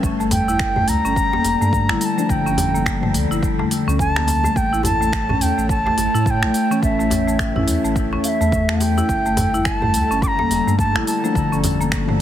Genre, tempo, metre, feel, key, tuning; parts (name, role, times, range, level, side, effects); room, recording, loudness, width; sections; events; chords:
organic downtempo; 106 BPM; 4/4; swing 59% on 16ths; A4 = 439 Hz
muted felt-like synth keys; accompaniment; 0.0-12.2 s; D3 to D4; -25 LUFS; left 4 dB; chorus, sidechain pumping, tape echo
warbly tape-like pad; sustained chords; 0.0-12.2 s; D3 to C#5; -27 LUFS; left 2 dB; chorus, built-in reverb, phaser, sidechain pumping
warm sub bass; bass; 0.0-12.2 s; F1 to A2; -24 LUFS; equal; sidechain pumping
deep house drum kit; drums; 0.0-12.2 s; finger snaps, hi-hat, shaker, toms; -26 LUFS; right 1 dB; small room ambience
electronic kick drum; drums; 0.0-12.1 s; -24 LUFS; equal; small room ambience
marimba with medium hard mallets; arpeggios; 0.2-12.2 s; A3 to E4; -23 LUFS; left 1 dB; tape echo
bright reedy bansuri; melody; 0.3-11.6 s; E5 to D6; -22 LUFS; right 1 dB; vintage 12-bit sampler grit, ping-pong delay
djembe; percussion; 0.3-11.8 s; -28 LUFS; left 1 dB
light reverb; heavily compressed radio sound, multiband compression; -16 LUFS; side -11 dB against mid
0.0-12.2 A section
0.0 Gm9; 4.6 A7; 9.1 Gm9